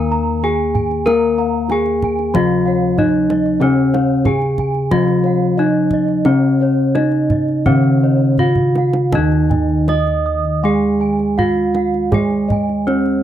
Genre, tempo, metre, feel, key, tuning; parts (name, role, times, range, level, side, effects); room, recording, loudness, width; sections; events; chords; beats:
Javanese gamelan; 80-94 BPM; 4/4; straight; Eb slendro; A4 = 436 Hz
gamelan-type bronze metallophone; melody; 0.0-13.2 s; Db4-25c to Eb5; -17 LUFS; right 1 dB
gamelan-type bronze metallophone; accompaniment; 0.0-13.2 s; Db3-25c to Bb3; -18 LUFS; left 2 dB
gamelan-type bossed gongs; arpeggios; 0.0-13.2 s; Db5-25c to Bb5; -28 LUFS; left 7 dB
gamelan-type bronze metallophone; arpeggios; 0.0-13.2 s; Db5-25c to Eb6; -26 LUFS; right 7 dB; slapback echo
gamelan-type bossed gongs; bass; 0.0-13.2 s; Eb2 to Bb4; -22 LUFS; left 1 dB
kendang; percussion; 0.1-13.2 s; -22 LUFS; right 2 dB
light reverb; dry, close 1970s-style studio recording; -13 LUFS; side -11 dB against mid
0.0-9.1 A section; 9.1-13.2 B section
drum fill 8.4-9.1
0.43 | 1.06 1.70 2.34 2.97 | 3.61 4.25 4.90 5.57 | 6.25 6.95 7.66 8.38 | 9.12 9.87 10.62 11.37 | 12.12 12.87